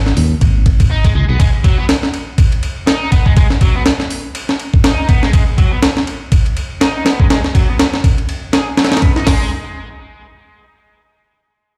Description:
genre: breakbeat, breaks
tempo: 122 BPM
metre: 4/4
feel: swing 57% on 16ths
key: G# minor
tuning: A4 = 442 Hz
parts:
  - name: modern bright fingered electric bass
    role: bass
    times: 0.0-1.4 s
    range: G#1 to D#2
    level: -15 LUFS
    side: equal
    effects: none
  - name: breakbeat sampler-style drum kit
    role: drums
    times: 0.1-9.4 s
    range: hi-hat, kick drum, ride cymbal, snare drum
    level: -14 LUFS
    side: equal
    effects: none
  - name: distorted electric guitar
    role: riff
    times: 0.9-9.5 s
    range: F#3 to G#4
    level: -25 LUFS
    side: equal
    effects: overdrive, vintage 12-bit sampler grit, low-pass filter, tape echo
room: light reverb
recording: played on a big sound system in a bare room, large studio reverb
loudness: -14 LUFS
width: mono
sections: 0.0-9.3 A section; 9.3-11.8 B section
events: none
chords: 0.0 G#m7; 9.3 N.C.

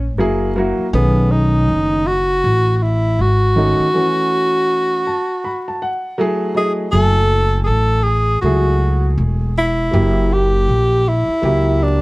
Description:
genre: hip hop, jazz-hop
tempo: 80 BPM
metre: 4/4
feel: swing 61% on 16ths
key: F# dorian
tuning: A4 = 440 Hz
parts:
  - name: breathy tenor saxophone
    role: melody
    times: 0.0-12.0 s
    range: B3 to A4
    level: -17 LUFS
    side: equal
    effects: none
  - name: upright bass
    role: bass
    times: 0.0-12.0 s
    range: E1 to C#2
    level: -16 LUFS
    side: equal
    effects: none
  - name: dark upright piano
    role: accompaniment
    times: 0.2-12.0 s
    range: D#3 to B5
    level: -20 LUFS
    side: right 1 dB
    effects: none
room: light reverb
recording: dark, warm production, vinyl crackle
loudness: -14 LUFS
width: side -22 dB against mid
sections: 0.0-6.9 A section; 6.9-12.0 B section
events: break 3.9-6.9; upright piano fill 4.7-6.9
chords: 0.2 F#9; 0.9 B13; 3.9 A6; 6.2 F#m9; 9.9 F#7b9

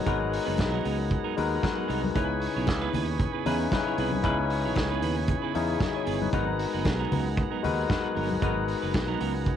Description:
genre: disco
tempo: 115 BPM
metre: 4/4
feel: swing 56% on 16ths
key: G# minor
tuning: A4 = 440 Hz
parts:
  - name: barky tine electric piano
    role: accompaniment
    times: 0.0-9.6 s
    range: C#3 to D#5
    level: -29 LUFS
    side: left 8 dB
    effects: overdrive, cassette tape
  - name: overdriven tonewheel organ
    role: sustained chords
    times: 0.0-9.6 s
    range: B3 to B5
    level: -36 LUFS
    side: right 12 dB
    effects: lush chorus, cassette tape
  - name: clean electric guitar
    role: accompaniment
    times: 0.1-9.5 s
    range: F#3 to C#5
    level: -34 LUFS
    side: right 11 dB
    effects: cassette tape
  - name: modern bright fingered electric bass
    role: bass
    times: 0.1-9.5 s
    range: F#1 to E2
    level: -31 LUFS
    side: right 2 dB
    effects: none
  - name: vintage drum kit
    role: drums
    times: 0.1-9.6 s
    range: hi-hat, kick drum, snare drum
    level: -31 LUFS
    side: right 2 dB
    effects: cassette tape
  - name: congas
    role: percussion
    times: 0.1-9.3 s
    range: none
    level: -35 LUFS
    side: left 6 dB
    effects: none
room: light reverb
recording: home recording on cassette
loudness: -25 LUFS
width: side -9 dB against mid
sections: 0.0-9.6 A section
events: none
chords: 0.0 G#m9; 2.2 C#m7; 6.3 G#m9

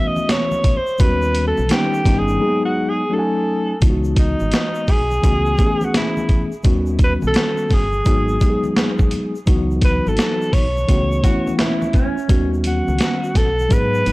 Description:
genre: hip hop, jazz-hop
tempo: 85 BPM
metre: 4/4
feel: swing 66% on 16ths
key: C# minor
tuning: A4 = 440 Hz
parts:
  - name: breathy alto saxophone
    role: melody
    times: 0.0-14.1 s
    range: D#4 to D#5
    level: -22 LUFS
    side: equal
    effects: tape echo
  - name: mellow tine electric piano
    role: accompaniment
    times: 0.0-14.1 s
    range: D#3 to G#5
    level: -21 LUFS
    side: left 1 dB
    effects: medium stereo tremolo
  - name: congas and egg shaker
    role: percussion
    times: 0.2-14.1 s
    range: none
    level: -33 LUFS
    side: right 1 dB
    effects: none
  - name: boom bap sampler-style drum kit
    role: drums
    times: 0.3-14.1 s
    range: hi-hat, kick drum, snare drum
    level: -17 LUFS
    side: equal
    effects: none
  - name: deep dub fingered electric bass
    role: bass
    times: 1.0-14.1 s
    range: G1 to G#2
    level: -21 LUFS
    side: equal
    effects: none
  - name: mellow electric guitar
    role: second line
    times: 11.2-12.5 s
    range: C#4 to F#4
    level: -25 LUFS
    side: right 2 dB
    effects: none
room: little or no reverb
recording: dry, gritty hardware recording, transformer saturation, cassette tape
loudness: -15 LUFS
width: side -21 dB against mid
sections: 0.0-3.8 A section; 3.8-14.1 B section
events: alto saxophone solo 0.0-3.8; break 2.4-3.8; drum fill 13.7-14.1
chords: 0.0 A6; 1.0 D#7alt; 2.4 G#m7; 3.1 F#m69; 3.8 C#m11; 5.2 A6/C#; 6.6 D#7alt; 8.1 G#m7; 9.5 C#m11; 10.9 A6/C#; 12.3 D#7alt

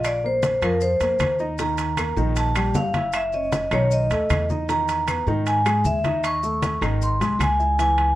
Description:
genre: Afro-Cuban jazz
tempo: 155 BPM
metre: 4/4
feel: straight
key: unclear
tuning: A4 = 440 Hz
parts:
  - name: vibraphone with medium hard mallets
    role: melody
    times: 0.0-8.2 s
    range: A#4 to C#6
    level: -22 LUFS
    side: equal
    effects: none
  - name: dark baby grand piano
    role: accompaniment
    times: 0.0-8.1 s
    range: D#3 to E#5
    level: -28 LUFS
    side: left 1 dB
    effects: none
  - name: upright bass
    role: bass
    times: 0.0-8.2 s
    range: G#1 to G#2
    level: -25 LUFS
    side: equal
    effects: none
  - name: claves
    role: percussion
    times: 0.0-7.6 s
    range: none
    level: -33 LUFS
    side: left 5 dB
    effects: none
  - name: maracas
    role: percussion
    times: 0.0-8.0 s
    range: none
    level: -42 LUFS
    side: left 8 dB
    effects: none
  - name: timbales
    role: percussion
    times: 0.0-8.2 s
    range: none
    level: -31 LUFS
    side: right 4 dB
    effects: none
  - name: congas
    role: percussion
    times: 0.1-8.2 s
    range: none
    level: -29 LUFS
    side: left 2 dB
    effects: none
room: light reverb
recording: worn, warbling old tape, cassette tape, warbly pitch drift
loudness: -19 LUFS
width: side -15 dB against mid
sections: 0.0-8.2 A section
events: none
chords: 0.0 A#sus2; 1.6 D#add9; 3.1 F#5; 3.9 B7; 4.7 Emaj7#11; 6.2 Amaj7#11; 7.0 G#

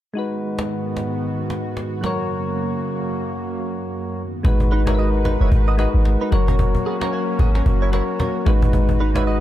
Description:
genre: afrobeats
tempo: 112 BPM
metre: 4/4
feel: swing 58% on 16ths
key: G# minor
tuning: A4 = 440 Hz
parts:
  - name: soft electric-piano-like synth keys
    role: accompaniment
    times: 0.1-9.4 s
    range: F#3 to C#5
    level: -24 LUFS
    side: left 2 dB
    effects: chorus, tremolo
  - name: lush unison pad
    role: sustained chords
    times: 0.2-9.4 s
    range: F#2 to B4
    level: -28 LUFS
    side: right 2 dB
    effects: chorus
  - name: cajon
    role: drums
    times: 0.6-9.3 s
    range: none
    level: -25 LUFS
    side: equal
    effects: none
  - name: clean 808-style bass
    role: bass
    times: 4.4-9.4 s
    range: F#1 to G#1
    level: -17 LUFS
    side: equal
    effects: none
  - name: direct-recorded clean electric guitar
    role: riff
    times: 4.7-9.4 s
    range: B3 to D#5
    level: -28 LUFS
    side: right 6 dB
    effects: analog chorus, tape echo
room: little or no reverb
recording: dark, warm production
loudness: -18 LUFS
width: side -13 dB against mid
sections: 0.2-4.4 A section; 4.4-9.4 B section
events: drums muted 2.3-4.4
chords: 0.2 G#m7; 2.0 F#; 4.2 G#m7; 6.3 F#; 8.5 G#m7

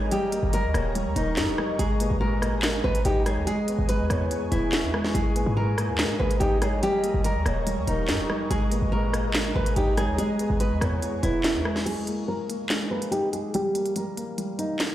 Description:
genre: hip hop, drill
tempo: 143 BPM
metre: 4/4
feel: half-time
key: G# harmonic minor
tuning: A4 = 442 Hz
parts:
  - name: nylon-string guitar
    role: melody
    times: 0.0-14.9 s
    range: D#4 to B4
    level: -29 LUFS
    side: equal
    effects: low-pass filter
  - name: gliding portamento lead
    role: second line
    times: 0.0-11.8 s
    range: A#4 to D#5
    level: -35 LUFS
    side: right 3 dB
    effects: chorus, tape echo
  - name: dark concert grand piano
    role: accompaniment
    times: 0.0-14.9 s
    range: A#2 to E4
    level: -30 LUFS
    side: left 1 dB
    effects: low-pass filter
  - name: ethereal airy pad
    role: sustained chords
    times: 0.0-11.8 s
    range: E4 to C#6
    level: -34 LUFS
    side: equal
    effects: ensemble chorus, built-in reverb
  - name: short 808-style bass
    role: bass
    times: 0.0-11.8 s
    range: D#1 to G#2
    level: -26 LUFS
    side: equal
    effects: none
  - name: drill drum kit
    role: drums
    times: 0.1-14.9 s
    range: crash cymbal, handclaps, hi-hat, rim click, snare drum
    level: -29 LUFS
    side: equal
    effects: none
room: light reverb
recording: played on a big sound system in a bare room, large studio reverb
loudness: -22 LUFS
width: side -13 dB against mid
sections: 0.0-11.9 A section; 11.9-14.9 B section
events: break 11.9-14.9; filter sweep 11.9-14.9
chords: 0.1 D#7; 1.8 G#madd9; 3.5 E6; 5.1 G#madd9; 6.8 D#7; 8.5 G#madd9; 10.2 E6; 11.9 G#sus2; 13.5 D#

